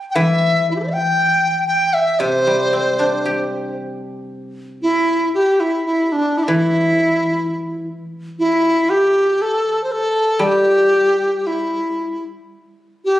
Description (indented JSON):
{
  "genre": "chinese traditional, Chinese chamber ensemble",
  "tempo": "59 BPM",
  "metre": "2/4",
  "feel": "straight",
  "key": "C gong mode",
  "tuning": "A4 = 440 Hz",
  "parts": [
    { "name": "bright reedy large dizi", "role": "melody", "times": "0.1-13.2 s", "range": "D4 to G5", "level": "-16 LUFS", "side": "equal", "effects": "none" },
    { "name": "guzheng", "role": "accompaniment", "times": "0.2-13.2 s", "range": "C3 to G4", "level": "-22 LUFS", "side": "equal", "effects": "none" }
  ],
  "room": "moderate recital hall reverb, RT60 1.5 s",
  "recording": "recorded on a phone in the room, studio ambience, compression",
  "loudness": "-15 LUFS",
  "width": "side -14 dB against mid",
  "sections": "0.0-4.3 A section; 4.3-13.2 B section",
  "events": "none",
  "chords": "none",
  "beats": "| 0.18 1.19 | 2.21 3.24 | 4.29 5.32 | 6.35 7.37 | 8.38 9.39 | 10.42 11.45 | 12.49"
}